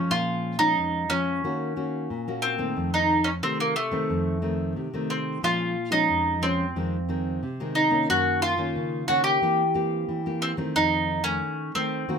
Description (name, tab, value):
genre	samba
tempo	90 BPM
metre	4/4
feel	straight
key	unclear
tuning	A4 = 438 Hz
part	mandolin	melody	0.0-12.2 s	A3 to G4	-24 LUFS	right 1 dB	none
part	nylon-string guitar	accompaniment	0.0-12.2 s	F2 to G4	-28 LUFS	left 1 dB	none
room	moderate studio reverb, RT60 0.6 s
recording	close, detailed microphones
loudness	-23 LUFS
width	side -6 dB against mid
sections	0.0-12.2 A section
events	none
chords	0.1 Bbm7; 1.4 Ebm7; 2.8 F7; 5.4 Bbm7; 6.8 Fm7; 8.1 Gb6; 9.4 C7/E; 10.8 F7